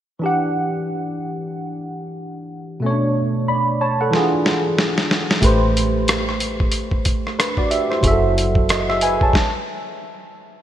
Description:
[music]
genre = R&B, neo-soul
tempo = 92 BPM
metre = 4/4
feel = swing 60% on 16ths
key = unclear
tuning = A4 = 440 Hz
[part]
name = barky tine electric piano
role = accompaniment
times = 0.2-9.5 s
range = B2 to B5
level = -20 LUFS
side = right 1 dB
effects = analog chorus
[part]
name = boom bap sampler-style drum kit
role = drums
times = 4.1-9.5 s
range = hi-hat, kick drum, rim click, snare drum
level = -20 LUFS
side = equal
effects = none
[part]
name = deep dub fingered electric bass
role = bass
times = 5.4-9.3 s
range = F#1 to A1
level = -22 LUFS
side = equal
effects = none
[sound]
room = moderate lush hall reverb, RT60 3.2 s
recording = bright 1980s-style digital production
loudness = -16 LUFS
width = side -11 dB against mid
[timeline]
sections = 0.2-10.6 A section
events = drum fill 4.1-5.4; stop 9.3-10.6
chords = 0.2 Em9; 2.8 Bm9; 4.1 E7b9; 5.4 Am9; 8.0 F#m7; 9.3 N.C.

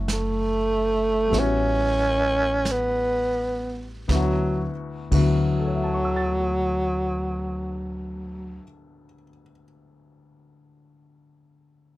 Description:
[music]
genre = jazz ballad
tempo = 40-49 BPM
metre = 4/4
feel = swing 69% on 8ths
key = D major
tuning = A4 = 441 Hz
[part]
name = warm baby grand piano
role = accompaniment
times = 0.0-12.0 s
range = D2 to A6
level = -28 LUFS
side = left 4 dB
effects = none
[part]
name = upright bass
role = bass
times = 0.0-8.6 s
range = F#1 to D2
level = -28 LUFS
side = equal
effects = none
[part]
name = growling tenor saxophone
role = melody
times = 0.1-8.6 s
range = F#3 to C#4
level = -24 LUFS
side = right 1 dB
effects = none
[part]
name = vintage brush drum kit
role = drums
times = 0.1-5.4 s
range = brushed snare drum, crash cymbal, hi-hat, kick drum, snare drum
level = -34 LUFS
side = right 3 dB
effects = none
[sound]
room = little or no reverb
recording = close, detailed microphones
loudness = -21 LUFS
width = side -17 dB against mid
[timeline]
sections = 0.0-4.1 A section; 4.1-10.0 B section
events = slowing down 0.0-4.1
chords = 0.0 F#m7; 1.3 A13; 4.1 D69

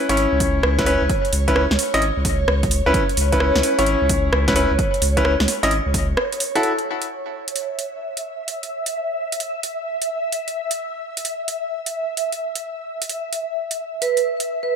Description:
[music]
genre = UK garage, two-step garage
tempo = 130 BPM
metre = 4/4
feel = swing 66% on 16ths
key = unclear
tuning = A4 = 438 Hz
[part]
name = ethereal airy pad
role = sustained chords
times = 0.3-14.8 s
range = C#5 to E5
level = -26 LUFS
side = right 1 dB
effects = ensemble chorus, built-in reverb, phaser, sidechain pumping
[part]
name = bright grand piano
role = stabs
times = 0.0-6.7 s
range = C#4 to D#5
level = -20 LUFS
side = left 1 dB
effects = ping-pong delay
[part]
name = saturated sub bass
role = bass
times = 0.1-6.1 s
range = G#1 to C#2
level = -21 LUFS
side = equal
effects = tube saturation, sidechain pumping
[part]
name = garage drum kit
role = drums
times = 0.1-14.5 s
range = hi-hat, rim click, snare drum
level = -24 LUFS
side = right 1 dB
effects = overdrive
[part]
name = electronic kick drum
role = drums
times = 0.4-6.1 s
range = none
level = -24 LUFS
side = equal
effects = none
[part]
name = vibraphone with medium hard mallets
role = melody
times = 14.0-14.7 s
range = B4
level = -20 LUFS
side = right 7 dB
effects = ping-pong delay
[sound]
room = light reverb, digital ambience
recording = none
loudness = -18 LUFS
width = side -7 dB against mid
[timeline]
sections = 0.0-6.6 A section; 6.6-14.8 B section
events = none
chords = 0.0 C#m7; 6.6 N.C.

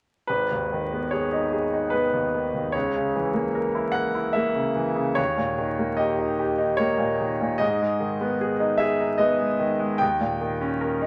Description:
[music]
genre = classical, romantic character piece for solo piano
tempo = 74 BPM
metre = 3/4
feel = rubato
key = G# minor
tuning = A4 = 440 Hz
[part]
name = bright concert grand piano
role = solo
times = 0.3-11.1 s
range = G#1 to G5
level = -24 LUFS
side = equal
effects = none
[sound]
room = moderate studio reverb, RT60 0.8 s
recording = vinyl crackle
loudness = -24 LUFS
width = mono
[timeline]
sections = 0.3-11.1 A section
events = none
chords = 0.3 G#m; 2.7 A#dim/C#; 5.2 D#; 7.6 G#m; 10.0 D#7

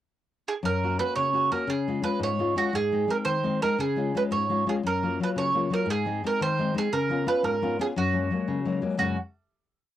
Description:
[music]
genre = italian folk, Italian serenade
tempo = 115 BPM (dotted quarters)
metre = 6/8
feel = straight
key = F# major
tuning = A4 = 440 Hz
[part]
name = bowl-back mandolin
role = melody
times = 0.5-9.2 s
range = F#4 to C#5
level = -26 LUFS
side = right 4 dB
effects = none
[part]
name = nylon-string guitar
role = accompaniment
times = 0.6-9.2 s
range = F#2 to F#4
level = -27 LUFS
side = left 4 dB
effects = cassette tape
[sound]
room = moderate booth ambience, RT60 0.2 s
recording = home recording on cassette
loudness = -24 LUFS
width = side -12 dB against mid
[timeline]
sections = 0.0-0.6 pickup bar; 0.6-9.0 A section; 9.0-10.0 final chord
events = none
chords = 0.0 N.C.; 0.6 F#; 1.7 C#; 2.7 G#; 3.8 C#; 4.8 F#maj7; 5.9 G#; 6.9 C#7; 7.9 F#add9

